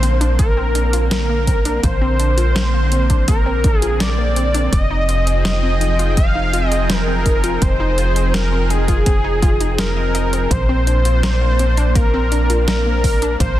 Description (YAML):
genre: synthwave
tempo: 83 BPM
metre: 4/4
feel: straight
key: unclear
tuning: A4 = 440 Hz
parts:
  - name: wide unison lead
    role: melody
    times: 0.0-13.6 s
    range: Ab4 to F5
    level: -20 LUFS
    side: equal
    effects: digital delay
  - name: lush unison pad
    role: sustained chords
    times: 0.0-13.6 s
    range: D3 to G5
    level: -25 LUFS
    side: right 1 dB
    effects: chorus, phaser, sidechain pumping
  - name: wide unison pluck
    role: arpeggios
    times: 0.0-13.5 s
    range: Bb3 to Eb5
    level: -27 LUFS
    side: left 3 dB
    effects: tape echo
  - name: tight sequencer bass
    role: bass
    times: 0.0-13.6 s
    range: F1 to Bb1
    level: -18 LUFS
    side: equal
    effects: tube saturation, sidechain pumping
  - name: detuned 8-bit digital drum machine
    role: drums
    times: 0.0-13.5 s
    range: hi-hat, snare drum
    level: -24 LUFS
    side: equal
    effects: none
  - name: electronic kick drum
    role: drums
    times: 0.4-13.5 s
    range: none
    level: -17 LUFS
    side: equal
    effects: none
room: light reverb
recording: dense, heavily limited modern master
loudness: -14 LUFS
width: side -14 dB against mid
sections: 0.0-13.6 A section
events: none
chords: 0.0 Bbadd9; 4.7 Fm7; 10.5 Bbadd9